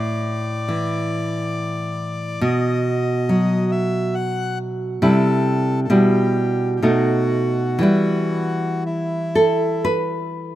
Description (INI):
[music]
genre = romantic duo for bandoneon and classical guitar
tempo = 54-71 BPM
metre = 3/4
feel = rubato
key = E minor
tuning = A4 = 442 Hz
[part]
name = bandoneon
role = melody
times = 0.0-9.9 s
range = E4 to F#5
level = -27 LUFS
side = left 3 dB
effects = none
[part]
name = nylon-string guitar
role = accompaniment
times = 0.0-10.6 s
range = A2 to B4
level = -18 LUFS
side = equal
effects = none
[sound]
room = light reverb, studio ambience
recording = rough home demo mix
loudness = -18 LUFS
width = side -13 dB against mid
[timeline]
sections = 0.0-10.6 A section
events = none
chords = 0.0 A5; 2.4 B; 5.0 C; 5.9 Em/B; 6.8 B7; 7.8 Em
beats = 0.70 1.56 | 2.42 3.29 4.15 | 5.03 5.90 6.83 | 7.84 8.86 9.87